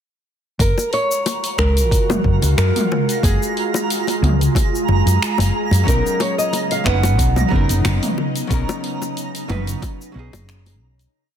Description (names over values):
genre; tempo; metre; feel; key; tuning
sunset chillout; 91 BPM; 4/4; swing 54% on 16ths; F# major; A4 = 441 Hz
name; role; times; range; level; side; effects
nylon-string guitar; melody; 0.6-10.4 s; G#4 to F#5; -22 LUFS; equal; digital delay
ethereal airy pad; sustained chords; 1.4-11.1 s; C#3 to G#4; -25 LUFS; right 1 dB; ensemble chorus, built-in reverb, phaser
woody fretless electric bass; bass; 0.6-11.1 s; F#1 to F#2; -17 LUFS; equal; tube saturation
deep house drum kit; drums; 0.6-11.1 s; finger snaps, hi-hat, shaker, toms; -24 LUFS; equal; soft clipping on snare
electronic kick drum; drums; 0.6-10.0 s; none; -20 LUFS; equal; none
twinkling granular texture; texture; 0.9-11.2 s; A#5; -28 LUFS; right 7 dB; built-in reverb
bongos; percussion; 0.8-10.8 s; none; -27 LUFS; left 6 dB; none
archtop guitar, miked and amplified; accompaniment; 5.8-11.1 s; F#3 to B4; -26 LUFS; moving between left 9 dB and right 7 dB; auto-pan, digital delay
room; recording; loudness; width
light reverb, digital ambience; dense, heavily limited modern master; -16 LUFS; side -9 dB against mid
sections
0.6-11.1 groove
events
fade-out 7.6-11.1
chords
0.6 F#maj9; 5.9 Bmaj9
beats
| 0.59 1.25 1.91 2.57 | 3.23 3.89 4.55 5.21 | 5.87 6.53 7.19 7.85 | 8.51 9.17 9.83 10.48